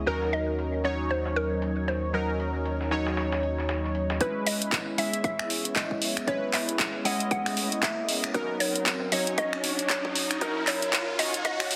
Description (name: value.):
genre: deep house.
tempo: 116 BPM.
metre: 4/4.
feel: swing 59% on 16ths.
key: C# dorian.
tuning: A4 = 440 Hz.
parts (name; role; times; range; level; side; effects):
soft string machine; sustained chords; 0.0-11.8 s; F#3 to E#5; -42 LUFS; equal; none.
warm analog keys; stabs; 0.0-11.8 s; F#3 to E5; -33 LUFS; equal; chorus, phaser, sidechain pumping, low-pass filter, tape echo.
round analog bass; bass; 0.0-4.2 s; D#2; -34 LUFS; equal; sidechain pumping.
mallet-like synth pluck; melody; 0.1-11.8 s; A#4 to F#5; -34 LUFS; equal; chorus, dub echo.
breakbeat sampler-style drum kit; drums; 0.1-4.2 s; hi-hat, snare drum; -39 LUFS; equal; high-pass filter on hats, low-pass filter on hats, high-pass filter on snare, low-pass filter on snare.
electronic kick drum; drums; 4.2-11.6 s; none; -36 LUFS; equal; high-pass filter on kick, high-pass filter on room.
house drum kit; drums; 4.2-11.8 s; finger snaps, handclaps, hi-hat; -30 LUFS; equal; low-pass filter on hats, low-pass filter on snare, low-pass filter on room.
riser; sound effects; 6.1-11.8 s; none; -39 LUFS; equal; none.
room: moderate plate reverb, RT60 1.3 s, digital ambience.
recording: heavily compressed radio sound, multiband compression, high-pass filter, faint mains hum.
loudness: -28 LUFS.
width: mono.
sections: 0.0-4.2 A section; 4.2-11.8 B section.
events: build-up 4.2-11.8; filter sweep on synth keys 4.2-11.8; riser 6.1-11.8.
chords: 0.1 D#m7; 4.2 C#m7; 8.3 D#m7.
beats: | 0.07 0.59 1.10 1.62 | 2.14 2.65 3.17 3.69 | 4.21 4.72 5.24 5.76 | 6.28 6.79 7.31 7.83 | 8.35 8.86 9.38 9.90 | 10.41 10.93 11.45.